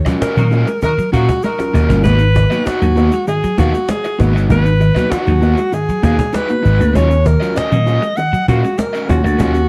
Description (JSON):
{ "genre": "funk", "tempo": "98 BPM", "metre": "4/4", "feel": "straight", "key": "G# dorian", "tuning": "A4 = 440 Hz", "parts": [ { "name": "tine electric piano", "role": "stabs", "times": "0.0-9.5 s", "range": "G#2 to F#4", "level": "-23 LUFS", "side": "equal", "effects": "overdrive, tube saturation" }, { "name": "raw garage guitar", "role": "accompaniment", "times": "0.1-9.6 s", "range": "C#4 to E#5", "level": "-25 LUFS", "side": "equal", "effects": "overdrive, harmonic tremolo" }, { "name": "clean electric guitar", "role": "riff", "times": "0.1-9.5 s", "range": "F#3 to B3", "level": "-26 LUFS", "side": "equal", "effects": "harmonic tremolo" }, { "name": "cajon", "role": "drums", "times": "0.1-9.6 s", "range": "none", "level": "-24 LUFS", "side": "equal", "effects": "none" }, { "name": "egg shaker", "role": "percussion", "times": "0.1-9.7 s", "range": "none", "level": "-49 LUFS", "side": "equal", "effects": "none" }, { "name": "breathy alto saxophone", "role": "melody", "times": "0.2-9.7 s", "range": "F#4 to F#5", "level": "-21 LUFS", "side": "equal", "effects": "none" }, { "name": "vintage slap bass", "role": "bass", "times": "0.2-9.7 s", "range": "G1 to A#2", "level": "-16 LUFS", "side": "equal", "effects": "none" }, { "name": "clear horn section", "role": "second line", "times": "0.4-1.9 s", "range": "D#4 to A#4", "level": "-30 LUFS", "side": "equal", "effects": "none" } ], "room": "light reverb", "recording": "dark, warm production", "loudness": "-14 LUFS", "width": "mono", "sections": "0.0-9.7 A section", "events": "band accent 0.0-2.1; drum fill 1.4-2.1", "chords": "0.0 D#m7; 2.1 G#m7; 7.0 D#m7" }